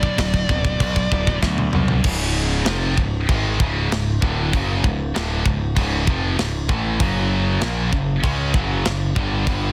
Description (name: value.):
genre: heavy metal.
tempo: 97 BPM.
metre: 4/4.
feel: straight.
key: C# phrygian dominant.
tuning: A4 = 442 Hz.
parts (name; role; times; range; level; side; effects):
high-gain lead guitar; melody; 0.0-1.4 s; D5; -28 LUFS; equal; distortion, tape echo.
distorted electric guitar; riff; 0.0-9.7 s; C#2 to C#4; -30 LUFS; equal; overdrive.
scooped high-gain guitar; riff; 0.0-9.7 s; C#2 to C#4; -28 LUFS; equal; distortion.
thick fuzz guitar; riff; 0.0-2.0, 7.0-9.7 s; F#2 to B4; -31 LUFS; equal; distortion.
growling picked electric bass; bass; 0.0-9.7 s; C#1 to D2; -25 LUFS; equal; overdrive.
tight metal drum kit; drums; 0.0-9.6 s; crash cymbal, kick drum, snare drum, toms; -25 LUFS; equal; none.
room: little or no reverb.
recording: dense, heavily limited modern master.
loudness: -20 LUFS.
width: mono.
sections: 0.0-2.0 A section; 2.0-9.7 B section.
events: drum fill 1.4-2.0.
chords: 0.0 Bm/D; 2.0 C#; 7.0 F#5.